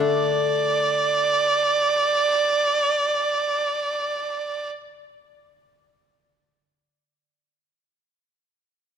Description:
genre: chinese traditional, Chinese chamber ensemble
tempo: free time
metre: none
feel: none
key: unclear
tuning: A4 = 440 Hz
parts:
  - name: clear erhu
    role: melody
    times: 0.0-4.7 s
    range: D5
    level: -20 LUFS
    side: right 3 dB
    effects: none
  - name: guzheng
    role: accompaniment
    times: 0.0-6.5 s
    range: D3 to A4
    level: -24 LUFS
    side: left 7 dB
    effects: none
room: moderate concert hall reverb, RT60 2.4 s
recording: minimal, uncompressed stereo recording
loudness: -20 LUFS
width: side -7 dB against mid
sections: 0.0-5.4 A section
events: none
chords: none

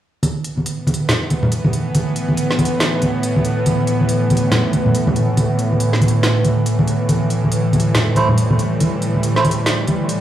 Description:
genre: deep dubstep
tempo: 140 BPM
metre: 4/4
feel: swing 61% on 16ths, half-time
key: unclear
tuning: A4 = 443 Hz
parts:
  - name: bowed-like drone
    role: sustained chords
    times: 0.7-10.2 s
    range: A2 to B3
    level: -18 LUFS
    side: right 1 dB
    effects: built-in reverb
  - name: deep house drum kit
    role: drums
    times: 0.2-10.2 s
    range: hi-hat, snare drum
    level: -22 LUFS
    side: equal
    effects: small room ambience
  - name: congas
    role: percussion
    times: 0.2-10.0 s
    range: none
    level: -19 LUFS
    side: equal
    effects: none
  - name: melodica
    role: stabs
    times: 8.2-9.4 s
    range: A3 to C5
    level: -22 LUFS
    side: right 3 dB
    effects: dub echo
room: moderate spring reverb, RT60 1.6 s, small room reverb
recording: played on a big sound system in a bare room, large studio reverb, vinyl crackle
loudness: -15 LUFS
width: side -11 dB against mid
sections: 0.2-10.2 A section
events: none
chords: 0.2 A5

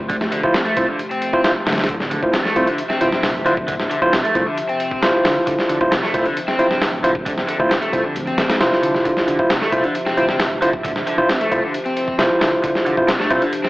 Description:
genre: breakbeat, breaks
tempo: 134 BPM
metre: 4/4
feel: straight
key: D minor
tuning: A4 = 438 Hz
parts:
  - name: warbly tape-like pad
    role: sustained chords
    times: 0.0-13.7 s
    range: C3 to E5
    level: -28 LUFS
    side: equal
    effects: chorus, built-in reverb, phaser, vintage 12-bit sampler grit, sidechain pumping
  - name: dark detuned saw bass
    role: bass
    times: 0.0-13.4 s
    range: D1 to C2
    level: -29 LUFS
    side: equal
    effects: none
  - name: crunchy overdriven guitar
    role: riff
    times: 0.1-13.7 s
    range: C3 to C4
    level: -22 LUFS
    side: equal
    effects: phaser, low-pass filter, tape echo
  - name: dusty soul sampler-style drum kit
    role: drums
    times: 0.1-13.7 s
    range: hi-hat, kick drum, snare drum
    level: -22 LUFS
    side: equal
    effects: none
  - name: overdriven tine electric piano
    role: stabs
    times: 0.4-13.4 s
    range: E4 to C5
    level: -19 LUFS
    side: equal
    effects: tape echo
room: moderate lush hall reverb, RT60 2.0 s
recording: vinyl crackle, AM radio sound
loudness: -16 LUFS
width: side -19 dB against mid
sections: 0.0-13.7 A section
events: kick drops out 8.2-9.1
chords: 0.0 Dm9

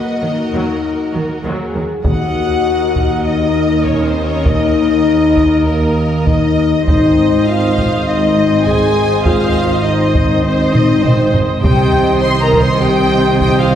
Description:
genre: cinematic, epic orchestral film score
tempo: 100 BPM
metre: 4/4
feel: straight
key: unclear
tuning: A4 = 440 Hz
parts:
  - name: clear studio violin section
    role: melody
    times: 0.0-13.8 s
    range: Bb4 to C6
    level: -25 LUFS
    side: left 1 dB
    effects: none
  - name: warm symphonic violin section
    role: second line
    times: 0.0-13.8 s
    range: F#4 to C6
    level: -22 LUFS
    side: left 1 dB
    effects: none
  - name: rich studio viola section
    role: accompaniment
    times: 0.0-13.8 s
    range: F#3 to Eb5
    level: -21 LUFS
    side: right 1 dB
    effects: none
  - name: mellow French horn section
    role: sustained chords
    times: 0.0-13.8 s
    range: Bb3 to C5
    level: -16 LUFS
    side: left 4 dB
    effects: none
  - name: rich symphonic cello section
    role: bass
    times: 0.2-13.8 s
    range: Eb2 to D#3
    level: -22 LUFS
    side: right 2 dB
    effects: none
  - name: warm symphonic double bass section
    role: bass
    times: 0.2-13.8 s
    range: Ab1 to D#2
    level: -22 LUFS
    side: right 2 dB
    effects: none
  - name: taiko ensemble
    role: drums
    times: 2.0-13.8 s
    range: none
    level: -18 LUFS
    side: equal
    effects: none
  - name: bright trombone section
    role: sustained chords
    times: 2.1-13.8 s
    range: Eb3 to Eb4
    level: -23 LUFS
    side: right 2 dB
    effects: none
  - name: warm tuba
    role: bass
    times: 2.1-13.8 s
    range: Ab1 to Eb2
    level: -21 LUFS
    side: right 3 dB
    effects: none
  - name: timpani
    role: percussion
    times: 2.1-2.9 s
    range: Eb3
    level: -23 LUFS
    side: equal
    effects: none
room: wet scoring stage reverb, RT60 1.7 s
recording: heard from further back in the room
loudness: -11 LUFS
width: side -10 dB against mid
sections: 0.0-2.1 A section; 2.1-13.8 B section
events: drum fill 10.7-11.6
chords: 0.0 D#m; 2.1 Ebm; 6.9 Ab; 11.6 Cm

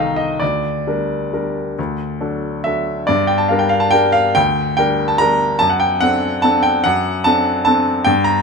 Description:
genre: classical, piano waltz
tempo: 130-153 BPM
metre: 3/4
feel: rubato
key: G minor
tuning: A4 = 440 Hz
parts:
  - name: clear baby grand piano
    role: solo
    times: 0.0-8.4 s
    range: C2 to Bb5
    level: -14 LUFS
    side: equal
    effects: none
room: moderate large studio reverb, RT60 1.5 s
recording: minimal, uncompressed stereo recording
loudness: -14 LUFS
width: side -4 dB against mid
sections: 0.0-3.1 A section; 3.1-8.4 B section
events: none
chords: 0.4 Gm/D; 1.8 D; 3.1 Gm; 5.6 D7/F#

